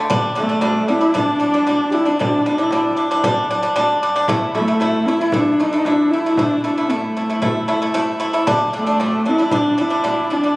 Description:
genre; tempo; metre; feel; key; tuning
mongolian traditional, Mongolian folk; 115 BPM; 4/4; straight; unclear; A4 = 440 Hz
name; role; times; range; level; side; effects
pipa; arpeggios; 0.0-10.5 s; G3 to E4; -19 LUFS; equal; none
frame drum; percussion; 0.1-10.2 s; none; -26 LUFS; equal; none
dark horsehead fiddle; melody; 0.4-10.6 s; A3 to G4; -17 LUFS; equal; none
room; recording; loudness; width
moderate concert hall reverb, RT60 2.1 s; recorded on a phone in the room, studio ambience, compression; -15 LUFS; side -21 dB against mid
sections
0.0-10.6 A section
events
none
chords
0.1 G5; 4.3 A5; 8.5 G5

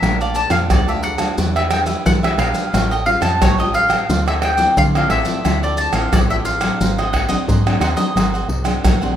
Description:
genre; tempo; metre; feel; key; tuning
samba and choro; 88 BPM; 4/4; straight; unclear; A4 = 440 Hz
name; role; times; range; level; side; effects
mandolin; melody; 0.0-9.1 s; C#5 to A5; -20 LUFS; left 1 dB; plate reverb
cavaquinho; accompaniment; 0.0-9.2 s; D4 to A5; -27 LUFS; right 4 dB; none
nylon-string guitar; accompaniment; 0.0-9.2 s; F2 to Gb4; -25 LUFS; left 4 dB; none
woody FM bass; bass; 0.0-9.1 s; Ab1 to E3; -21 LUFS; equal; none
maracas, surdo, pandeiro and tamborim; percussion; 0.0-9.2 s; none; -18 LUFS; equal; none
room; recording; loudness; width
moderate studio ambience, RT60 0.4 s; none; -14 LUFS; side -10 dB against mid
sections
0.0-9.2 A section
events
none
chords
0.0 Bbmaj7; 1.4 Em9; 2.7 Aaug7; 4.1 Dm9; 6.8 Ab7#11

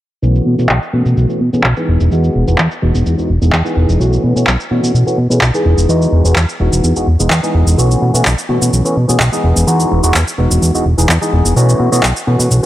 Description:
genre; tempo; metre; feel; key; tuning
filtered disco house; 127 BPM; 4/4; straight; B mixolydian; A4 = 439 Hz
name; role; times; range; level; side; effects
overdriven tine electric piano; accompaniment; 0.2-12.7 s; E3 to G#4; -16 LUFS; equal; phaser, low-pass filter
fat analog bass; bass; 0.2-12.7 s; E1 to B2; -12 LUFS; equal; low-pass filter
electronic cabasa and handclaps; drums; 0.2-12.7 s; none; -17 LUFS; equal; low-pass filter on perc, low-pass filter on snare
room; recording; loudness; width
little or no reverb; none; -10 LUFS; side -14 dB against mid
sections
0.2-12.7 A section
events
filter sweep on drum 0.2-12.7; filter sweep 0.2-12.7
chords
0.2 B7sus4; 1.9 Emaj7; 4.0 B7sus4; 5.7 Emaj7; 7.8 B7sus4; 9.4 Emaj7; 11.6 B7sus4

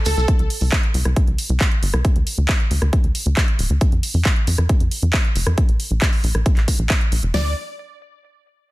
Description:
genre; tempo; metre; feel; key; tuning
uplifting trance; 136 BPM; 4/4; straight; unclear; A4 = 440 Hz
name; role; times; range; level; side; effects
dense compressed supersaw; melody; 0.1-0.3, 7.3-7.5 s; A4 to D5; -27 LUFS; right 1 dB; sidechain pumping, ping-pong delay
tight sequencer bass; bass; 0.1-7.5 s; D1 to F2; -18 LUFS; equal; sidechain pumping
big-room dance drum kit; drums; 0.1-7.3 s; handclaps, hi-hat, rim click; -24 LUFS; equal; sidechain pumping on hats, studio reverb
big-room dance drum kit; drums; 0.3-7.4 s; hi-hat, kick drum, snare drum; -18 LUFS; equal; studio reverb
room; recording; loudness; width
digital ambience; dense, heavily limited modern master; -16 LUFS; side -19 dB against mid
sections
0.0-7.3 A section; 7.3-8.7 B section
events
filter sweep on analog synth bass 0.0-7.3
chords
0.3 C5; 2.0 N.C.; 5.6 Bb5; 7.3 N.C.

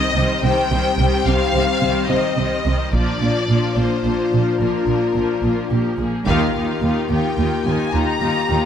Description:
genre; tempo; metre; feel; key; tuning
cinematic, epic orchestral film score; 72 BPM (dotted quarters); 6/8; straight; Eb major; A4 = 440 Hz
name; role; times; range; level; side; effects
warm symphonic violin section; melody; 0.0-8.7 s; Bb4 to Bb5; -24 LUFS; left 4 dB; none
warm symphonic violin section; second line; 0.0-8.7 s; C4 to C5; -26 LUFS; left 2 dB; none
clear symphonic viola section; accompaniment; 0.0-8.7 s; Eb3 to Eb4; -26 LUFS; equal; none
mellow French horn section; sustained chords; 0.0-8.7 s; Bb3 to G4; -23 LUFS; left 6 dB; none
clear symphonic double bass section; bass; 0.2-8.6 s; Bb1 to Eb2; -23 LUFS; right 2 dB; none
warm symphonic cello section; bass; 0.2-8.6 s; Eb2 to C3; -24 LUFS; right 3 dB; none
taiko ensemble; drums; 2.9-7.3 s; none; -26 LUFS; equal; none
room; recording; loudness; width
moderate scoring stage reverb, RT60 1.8 s; none; -16 LUFS; side -8 dB against mid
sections
0.0-6.3 A section; 6.3-8.7 B section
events
band accent 6.3-6.8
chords
0.0 Cm; 2.9 Bb; 6.3 Ebadd9

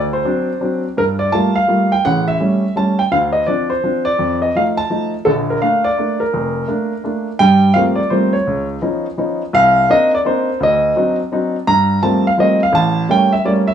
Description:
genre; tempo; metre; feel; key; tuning
jazz; 168 BPM; 3/4; swing 63% on 8ths; Bb major, G minor from 7.4 s; A4 = 440 Hz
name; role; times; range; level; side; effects
warm grand piano; solo; 0.0-13.7 s; F1 to Bb5; -13 LUFS; equal; none
room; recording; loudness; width
wet studio reverb, RT60 0.5 s; band playing live in one room, small room ambience; -13 LUFS; side -8 dB against mid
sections
0.0-7.4 A section; 7.4-13.7 B section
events
none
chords
0.0 D7; 1.0 Gm9; 2.0 A7; 3.1 Dm7; 4.2 F7; 5.3 Bbmaj7; 7.4 Gm11; 8.5 C#9; 9.5 Cm9; 10.6 D7b9; 11.7 Gm11; 12.7 A7b9

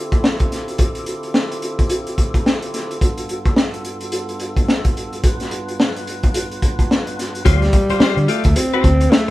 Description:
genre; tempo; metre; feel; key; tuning
funk; 108 BPM; 4/4; swing 60% on 16ths; D dorian; A4 = 440 Hz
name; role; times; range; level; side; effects
percussive tonewheel organ; sustained chords; 0.0-7.4 s; G2 to B4; -27 LUFS; right 1 dB; slow rotary speaker, overdrive
crunchy breakbeat drum kit; drums; 0.1-9.3 s; hi-hat, kick drum, snare drum; -17 LUFS; equal; none
breathy alto saxophone; melody; 7.5-9.3 s; G3 to C4; -19 LUFS; equal; none
clean electric guitar; accompaniment; 7.5-9.3 s; F4 to D5; -22 LUFS; left 5 dB; none
vintage muted fingered electric bass; bass; 7.5-9.3 s; D2 to D3; -17 LUFS; equal; none
room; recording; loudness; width
light reverb; band playing live in one room; -16 LUFS; side -16 dB against mid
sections
0.0-7.5 A section; 7.5-9.3 B section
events
none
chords
0.0 Dm11; 3.0 G9; 7.5 Dm7

